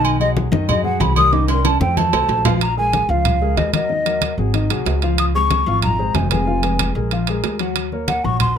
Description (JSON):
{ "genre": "Afro-Cuban jazz", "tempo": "187 BPM", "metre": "4/4", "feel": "straight", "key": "Bb minor", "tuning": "A4 = 438 Hz", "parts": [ { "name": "mellow hollow jazz flute", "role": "melody", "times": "0.0-8.6 s", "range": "D#5 to D#6", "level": "-19 LUFS", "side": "equal", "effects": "none" }, { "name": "dark concert grand piano", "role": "accompaniment", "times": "0.0-8.5 s", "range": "Eb3 to Gb5", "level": "-23 LUFS", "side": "left 4 dB", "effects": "none" }, { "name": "upright bass", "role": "bass", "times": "0.0-8.6 s", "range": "F1 to F#2", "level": "-20 LUFS", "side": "equal", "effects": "none" }, { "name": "agogo bells and timbales", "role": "percussion", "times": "0.0-8.6 s", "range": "none", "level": "-23 LUFS", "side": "right 10 dB", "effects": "none" }, { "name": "congas", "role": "percussion", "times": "0.0-8.6 s", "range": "none", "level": "-24 LUFS", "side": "left 2 dB", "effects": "none" } ], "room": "light reverb", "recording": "close, detailed microphones", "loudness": "-15 LUFS", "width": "side -8 dB against mid", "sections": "0.0-2.6 A section; 2.6-8.6 B section", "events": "flute solo 0.0-2.6; drum fill 1.3-2.6", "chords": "0.0 B6; 1.3 Cm7; 2.0 F; 2.6 Bbm7; 3.9 Ebm; 4.5 Ab6; 5.2 Dbmaj7; 6.5 Fdim; 7.1 Bb5; 7.8 Ebm7", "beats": "| 0.04 0.37 0.69 1.01 | 1.33 1.65 1.97 2.29 | 2.61 2.93 3.25 3.58 | 3.90 4.22 4.54 4.86 | 5.18 5.51 5.83 6.15 | 6.47 6.79 7.12 7.44 | 7.76 8.08 8.40" }